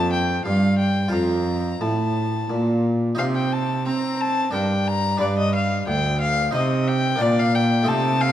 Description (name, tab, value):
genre	classical, baroque-style sonata movement with continuo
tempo	90 BPM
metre	3/4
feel	straight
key	G minor from 3.2 s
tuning	A4 = 441 Hz
part	warm violin	melody	0.0-8.3 s	D5 to Bb5	-24 LUFS	left 4 dB	none
part	harpsichord	accompaniment	0.0-8.3 s	D2 to Eb5	-26 LUFS	equal	none
part	rich cello	bass	0.0-8.3 s	D2 to C4	-22 LUFS	right 2 dB	none
room	moderate scoring stage reverb, RT60 1.6 s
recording	dark, warm production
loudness	-19 LUFS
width	side -11 dB against mid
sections	0.0-8.3 A section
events	none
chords	0.0 Eb; 1.1 F; 3.2 Cm; 4.5 Gm; 5.2 G; 6.5 Cm; 7.2 Gm/Bb